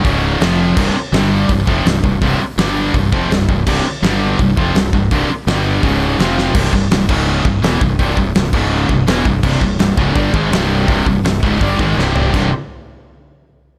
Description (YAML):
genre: heavy metal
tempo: 166 BPM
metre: 4/4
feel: straight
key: unclear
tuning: A4 = 440 Hz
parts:
  - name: distorted electric guitar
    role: riff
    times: 0.0-12.5 s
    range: C2 to Ab3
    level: -21 LUFS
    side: equal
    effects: distortion
  - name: scooped high-gain guitar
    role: riff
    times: 0.0-12.5 s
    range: C2 to Ab3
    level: -22 LUFS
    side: equal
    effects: distortion
  - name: sludgy distorted guitar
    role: riff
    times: 0.0-6.5, 9.4-12.5 s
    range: C2 to Ab3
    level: -24 LUFS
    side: equal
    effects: none
  - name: fuzz fingered electric bass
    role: bass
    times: 0.0-12.5 s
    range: C1 to Ab1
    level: -22 LUFS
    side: equal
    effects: overdrive
  - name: big rock drum kit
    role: drums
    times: 0.0-12.4 s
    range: crash cymbal, hi-hat, kick drum, snare drum, toms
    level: -20 LUFS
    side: equal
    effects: none
room: small room ambience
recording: none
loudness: -15 LUFS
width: mono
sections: 0.0-6.6 A section; 6.6-12.3 B section; 12.3-13.8 C section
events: drum fill 6.4, 12.0-12.3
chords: 0.1 Db5; 0.4 F5; 0.8 C5; 1.1 G5; 1.5 C5; 2.6 G5; 2.9 C5; 4.0 G5; 4.4 C5; 5.5 G5; 5.8 Db5; 6.2 F5; 6.6 C5; 7.1 Db5; 7.5 C; 8.5 Db5; 8.9 C; 12.3 C5